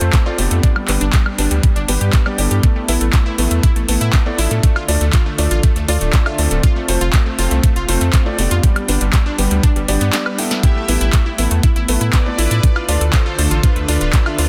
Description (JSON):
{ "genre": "progressive house", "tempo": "120 BPM", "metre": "4/4", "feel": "straight", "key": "A minor", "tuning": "A4 = 443 Hz", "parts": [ { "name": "airy breathy pad", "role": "sustained chords", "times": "0.0-14.5 s", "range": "D3 to A4", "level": "-29 LUFS", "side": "equal", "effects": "chorus, sidechain pumping" }, { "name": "analog pluck", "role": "arpeggios", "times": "0.0-14.5 s", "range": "G3 to G5", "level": "-27 LUFS", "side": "equal", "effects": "chorus, vintage 12-bit sampler grit, sidechain pumping, tape echo" }, { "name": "warm grand piano", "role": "stabs", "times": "0.0-14.5 s", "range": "B3 to E5", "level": "-26 LUFS", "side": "equal", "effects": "sidechain pumping, tape echo" }, { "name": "round analog bass", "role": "bass", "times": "0.0-14.5 s", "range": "D1 to A2", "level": "-19 LUFS", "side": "equal", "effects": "sidechain pumping" }, { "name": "big-room dance drum kit", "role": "drums", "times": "0.0-14.5 s", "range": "handclaps, hi-hat, snare drum, woodblock", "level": "-24 LUFS", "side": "equal", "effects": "none" }, { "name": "electronic kick drum", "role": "drums", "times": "0.1-14.2 s", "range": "none", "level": "-16 LUFS", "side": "equal", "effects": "none" }, { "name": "soft supersaw", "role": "melody", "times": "10.6-14.5 s", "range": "D4 to E5", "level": "-28 LUFS", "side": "equal", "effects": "cassette tape, sidechain pumping, tape echo" } ], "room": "little or no reverb", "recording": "dense, heavily limited modern master", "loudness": "-15 LUFS", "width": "mono", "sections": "0.0-14.5 A section", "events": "break 10.1-10.6; drum fill 10.1-10.6", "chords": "0.0 F; 0.6 G; 2.6 Asus2; 4.6 Dm; 6.6 F; 8.6 G; 10.6 Asus2; 12.6 Dm", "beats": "0.13 | 0.63 1.13 1.63 2.13 | 2.63 3.13 3.63 4.13 | 4.63 5.13 5.63 6.13 | 6.63 7.13 7.63 8.13 | 8.63 9.13 9.63 10.13 | 10.63 11.13 11.63 12.13 | 12.63 13.13 13.63 14.13" }